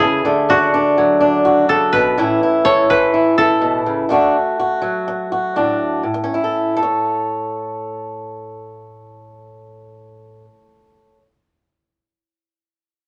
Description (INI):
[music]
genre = highlife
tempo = 124 BPM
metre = 4/4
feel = swing 54% on 16ths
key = A major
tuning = A4 = 440 Hz
[part]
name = koto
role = melody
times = 0.0-5.3 s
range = F#4 to C#5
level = -19 LUFS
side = equal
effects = none
[part]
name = fingerpicked swing-style acoustic guitar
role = accompaniment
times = 0.0-11.2 s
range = A2 to C#5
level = -18 LUFS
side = equal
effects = none
[sound]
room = wet small room reverb, RT60 0.5 s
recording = none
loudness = -16 LUFS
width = mono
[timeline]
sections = 0.0-6.0 A section; 6.0-9.9 B section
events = koto solo 0.0-6.0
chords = 0.2 D; 2.2 Aadd9; 4.1 D; 6.0 A